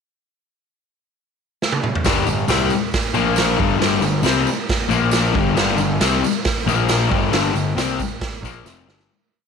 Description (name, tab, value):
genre	garage rock duo or trio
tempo	136 BPM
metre	4/4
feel	straight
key	unclear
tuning	A4 = 440 Hz
part	raw garage drum kit	drums	1.6-9.1 s	hi-hat, kick drum, snare drum, toms	-21 LUFS	right 3 dB	none
part	fuzz guitar	riff	2.0-9.1 s	F2 to C4	-19 LUFS	left 9 dB	distortion
part	tambourine	percussion	2.0-8.8 s	none	-32 LUFS	right 14 dB	none
part	fuzz picked electric bass	bass	2.1-9.1 s	F1 to C2	-23 LUFS	right 3 dB	overdrive
room	light reverb, studio ambience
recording	1960s-style stereo with parts hard left and right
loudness	-16 LUFS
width	side -6 dB against mid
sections	0.3-2.1 pickup bar; 2.1-9.1 riff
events	drum fill 1.6-2.1, 8.6-9.1; fade-out 7.3-9.1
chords	0.3 N.C.; 2.1 G5; 3.2 Bb5; 3.6 G5; 4.9 Bb5; 5.4 G5; 6.7 Bb5; 7.1 G5